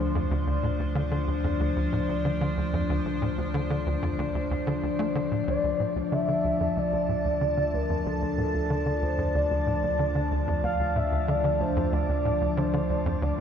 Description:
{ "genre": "ambient, sequencer-driven space music", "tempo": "93 BPM", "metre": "4/4", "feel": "straight", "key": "D minor", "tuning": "A4 = 440 Hz", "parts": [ { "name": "evolving wavetable pad", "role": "sustained chords", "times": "0.0-13.4 s", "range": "F3 to A5", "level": "-29 LUFS", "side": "left 3 dB", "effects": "chorus, built-in reverb, shimmer reverb" }, { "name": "tight sequencer bass", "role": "riff", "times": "0.0-13.4 s", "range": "D2 to A3", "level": "-30 LUFS", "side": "equal", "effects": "ensemble chorus, vintage 12-bit sampler grit, ping-pong delay" }, { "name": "warm sub bass", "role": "bass", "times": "0.0-13.4 s", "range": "D2", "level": "-32 LUFS", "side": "right 1 dB", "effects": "none" }, { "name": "expressive synth lead", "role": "melody", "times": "5.5-13.4 s", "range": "A4 to F5", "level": "-28 LUFS", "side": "right 1 dB", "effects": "lush chorus, shimmer reverb, ping-pong delay" } ], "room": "wet cathedral reverb, RT60 5.0 s", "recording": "in a vast, echoing space", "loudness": "-24 LUFS", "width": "side -8 dB against mid", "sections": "0.0-13.4 A section", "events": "none", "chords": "0.0 Dm", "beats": "| 0.32 0.96 1.61 2.25 | 2.90 3.54 4.19 4.83 | 5.48 6.12 6.77 7.41 | 8.06 8.70 9.35 9.99 | 10.64 11.29 11.93 12.57 | 13.22" }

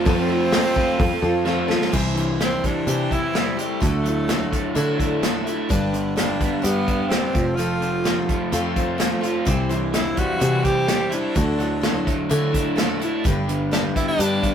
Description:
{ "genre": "folk rock and heartland rock", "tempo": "127 BPM", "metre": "4/4", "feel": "straight", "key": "unclear", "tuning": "A4 = 440 Hz", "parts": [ { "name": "picked steel-string acoustic guitar", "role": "accompaniment", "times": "0.0-14.5 s", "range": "C3 to C5", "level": "-26 LUFS", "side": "left 1 dB", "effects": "none" }, { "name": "crunchy overdriven guitar", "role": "riff", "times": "0.0-14.5 s", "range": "F2 to A4", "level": "-25 LUFS", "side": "right 1 dB", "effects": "spring reverb" }, { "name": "bright tenor saxophone", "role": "melody", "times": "0.1-14.5 s", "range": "A3 to G4", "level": "-25 LUFS", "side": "right 1 dB", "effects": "none" }, { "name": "overdriven reed electric piano", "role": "accompaniment", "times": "0.1-1.8 s", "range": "A3 to C5", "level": "-31 LUFS", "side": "right 4 dB", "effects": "none" }, { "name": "picked electric bass", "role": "bass", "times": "0.1-14.5 s", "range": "F1 to D3", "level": "-25 LUFS", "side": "equal", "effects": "none" }, { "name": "unplugged drum kit", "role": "drums", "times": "0.1-14.5 s", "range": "crash cymbal, hi-hat, kick drum, snare drum", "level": "-24 LUFS", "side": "equal", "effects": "none" } ], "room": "moderate studio reverb, RT60 0.6 s", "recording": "rough rehearsal-room recording, warm saturation", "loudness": "-19 LUFS", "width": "side -8 dB against mid", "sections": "0.0-1.9 A section; 1.9-14.5 B section", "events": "drum fill 1.5-1.9", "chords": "0.0 F; 1.9 C; 3.8 Dadd9; 5.7 G; 7.4 F; 9.5 C; 11.4 Dadd9; 13.3 G", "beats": "| 0.06 0.53 1.00 1.47 | 1.93 2.40 2.87 3.35 | 3.82 4.29 4.76 5.23 | 5.70 6.17 6.64 7.12 | 7.59 8.06 8.53 9.00 | 9.47 9.95 10.42 10.89 | 11.36 11.84 12.31 12.78 | 13.25 13.73 14.20" }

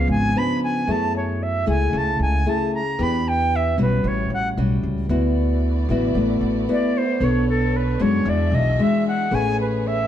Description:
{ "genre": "bossa nova", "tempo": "114 BPM", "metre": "4/4", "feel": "straight", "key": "unclear", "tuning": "A4 = 442 Hz", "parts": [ { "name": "bright reedy jazz flute", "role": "melody", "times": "0.0-10.1 s", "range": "A4 to B5", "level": "-24 LUFS", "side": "right 1 dB", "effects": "none" }, { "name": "nylon-string guitar", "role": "accompaniment", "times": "0.0-10.1 s", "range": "A2 to C#5", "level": "-22 LUFS", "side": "left 2 dB", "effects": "none" }, { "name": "upright bass", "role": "bass", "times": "0.0-10.1 s", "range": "G#1 to F#2", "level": "-22 LUFS", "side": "right 1 dB", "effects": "none" }, { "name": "warm symphonic violin section", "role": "sustained chords", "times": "5.1-10.1 s", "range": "B3 to E5", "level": "-33 LUFS", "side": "right 1 dB", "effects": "none" } ], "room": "wet studio reverb, RT60 0.9 s", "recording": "heard from further back in the room", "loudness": "-18 LUFS", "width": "side -10 dB against mid", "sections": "0.0-10.1 A section", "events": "flute solo 0.0-10.1", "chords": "0.0 C#7b9; 0.9 F#m9; 3.0 Em7; 4.0 A13; 5.1 D69; 7.2 Bm9; 8.3 E9; 9.3 Amaj9", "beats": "0.35 | 0.88 1.41 1.94 2.46 | 2.99 3.52 4.04 4.57 | 5.10 5.62 6.15 6.68 | 7.20 7.73 8.26 8.79 | 9.31 9.84" }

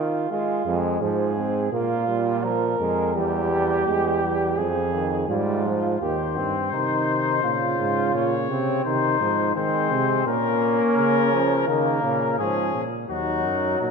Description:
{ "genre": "classical, imitative canzona for brass ensemble", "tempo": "84 BPM", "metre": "4/4", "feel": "straight", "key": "unclear", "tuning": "A4 = 440 Hz", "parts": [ { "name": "mellow flugelhorn", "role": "second line", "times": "0.0-13.9 s", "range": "Bb3 to Bb4", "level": "-26 LUFS", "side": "right 4 dB", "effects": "none" }, { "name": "clear trombone", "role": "accompaniment", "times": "0.0-13.9 s", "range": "Db3 to C4", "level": "-26 LUFS", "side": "equal", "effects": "none" }, { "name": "bright bass trombone", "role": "bass", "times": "0.7-13.9 s", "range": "Eb2 to Eb3", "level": "-26 LUFS", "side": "right 2 dB", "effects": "none" }, { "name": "mellow trumpet", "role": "melody", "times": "6.0-13.9 s", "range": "Gb4 to Db5", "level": "-25 LUFS", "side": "left 9 dB", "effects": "none" } ], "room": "moderate concert hall reverb, RT60 2.2 s", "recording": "minimal, uncompressed stereo recording", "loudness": "-20 LUFS", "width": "side -5 dB against mid", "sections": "0.0-6.0 A section; 6.0-13.9 B section", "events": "none", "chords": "0.3 Fm; 1.7 Bb5; 3.2 Em; 4.6 Fm; 6.0 Cm/Eb; 7.4 Bbm; 8.9 Ab; 10.3 Bbm; 13.1 Ebm", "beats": "| 0.31 1.02 1.72 2.44 | 3.15 3.87 4.58 5.29 | 6.00 6.72 7.43 8.14 | 8.85 9.56 10.26 10.97 | 11.68 12.38 13.09 13.80" }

